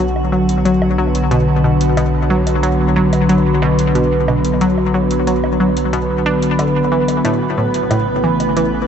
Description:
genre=ambient, sequencer-driven space music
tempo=91 BPM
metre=4/4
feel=straight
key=B minor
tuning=A4 = 440 Hz
part: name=evolving wavetable pad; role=sustained chords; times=0.0-8.9 s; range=C#3 to B4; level=-15 LUFS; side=equal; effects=chorus, built-in reverb
part: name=analog pluck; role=riff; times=0.0-8.7 s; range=A2 to D4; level=-18 LUFS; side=equal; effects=chorus, ping-pong delay
part: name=warm sub bass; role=bass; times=0.0-8.9 s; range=A1 to B1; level=-22 LUFS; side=equal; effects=none
part: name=electronic woodblock and hi-hat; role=percussion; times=0.2-8.7 s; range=none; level=-29 LUFS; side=left 1 dB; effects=ping-pong delay
room=moderate lush hall reverb, RT60 2.6 s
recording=cassette tape, nothing above 8.0 kHz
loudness=-13 LUFS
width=side -8 dB against mid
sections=0.0-8.9 A section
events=none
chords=0.0 Bm; 7.2 Aadd9

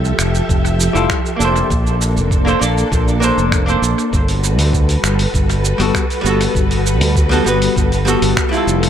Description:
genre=sunset chillout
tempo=99 BPM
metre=4/4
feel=straight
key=unclear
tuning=A4 = 440 Hz
part: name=archtop guitar, miked and amplified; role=accompaniment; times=0.0-8.9 s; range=G3 to D5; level=-18 LUFS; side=equal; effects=auto-pan, low-pass filter, dub echo
part: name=soft string machine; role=sustained chords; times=0.0-8.9 s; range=F3 to E5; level=-21 LUFS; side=equal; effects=ensemble chorus
part: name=modern bright fingered electric bass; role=bass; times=0.0-8.9 s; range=F1 to D2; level=-16 LUFS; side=equal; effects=none
part: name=dusty soul sampler-style drum kit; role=drums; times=0.0-8.9 s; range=cabasa, finger snaps, hi-hat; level=-23 LUFS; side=right 2 dB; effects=dub echo
part: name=electronic kick drum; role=drums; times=0.5-8.5 s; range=none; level=-18 LUFS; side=equal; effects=none
room=light reverb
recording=echo-heavy mix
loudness=-13 LUFS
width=side -9 dB against mid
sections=0.0-8.9 A section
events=none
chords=0.0 Fmaj9; 1.7 Bbmaj9; 4.1 Gmaj9

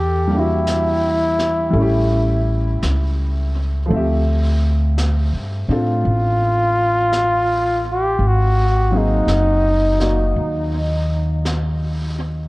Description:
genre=jazz ballad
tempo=56 BPM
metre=4/4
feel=swing 67% on 8ths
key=unclear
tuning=A4 = 440 Hz
part: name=warm flugelhorn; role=melody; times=0.0-11.1 s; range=Eb4 to G4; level=-19 LUFS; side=equal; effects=analog delay
part: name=upright bass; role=bass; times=0.0-12.5 s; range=Gb1 to A2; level=-18 LUFS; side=equal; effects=none
part: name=clear concert grand piano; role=accompaniment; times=0.3-12.5 s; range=F3 to E5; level=-24 LUFS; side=equal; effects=none
part: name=jazz brush drum kit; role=drums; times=0.7-12.5 s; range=brushed snare drum, hi-hat, snare drum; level=-32 LUFS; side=equal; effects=analog delay
room=light reverb, small room reverb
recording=echo-heavy mix, cassette tape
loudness=-15 LUFS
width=side -21 dB against mid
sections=0.0-12.5 A section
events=none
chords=0.0 Em7b5; 1.7 A7; 3.9 Dm11; 8.2 Ab9

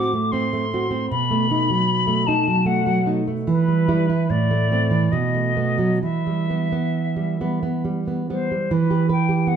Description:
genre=romantic duo for flute and classical guitar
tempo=64-82 BPM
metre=3/4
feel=rubato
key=E minor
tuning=A4 = 440 Hz
part: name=concert flute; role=melody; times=0.0-9.6 s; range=B4 to D6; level=-24 LUFS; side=left 5 dB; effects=none
part: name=nylon-string guitar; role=accompaniment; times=0.0-9.6 s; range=A2 to B4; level=-20 LUFS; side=right 3 dB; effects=none
room=moderate recital hall reverb, RT60 1.4 s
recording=none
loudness=-18 LUFS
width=side -8 dB against mid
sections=0.0-8.7 A section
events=none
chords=0.0 F#dim/A; 1.1 B7; 3.5 Em; 4.3 Am; 5.1 B7; 6.0 Em

